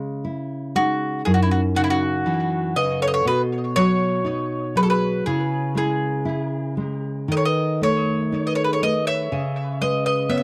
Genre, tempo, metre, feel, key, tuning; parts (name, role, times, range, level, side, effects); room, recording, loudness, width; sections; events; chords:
fado-style ballad; 60 BPM; 2/4; rubato; C# minor; A4 = 440 Hz
nylon-string guitar; accompaniment; 0.0-10.4 s; F#2 to E4; -26 LUFS; equal
mandolin; melody; 0.8-10.4 s; E4 to E5; -26 LUFS; equal; tape echo
marimba with medium mallets; second line; 0.8-10.4 s; C#4 to C#5; -28 LUFS; equal
light reverb; dry, close 1970s-style studio recording; -22 LUFS; mono
0.0-10.4 A section
0.0 C#m; 1.3 F#5; 3.3 B; 5.3 C#m; 7.3 Aadd9(#11)/D#; 9.3 C#5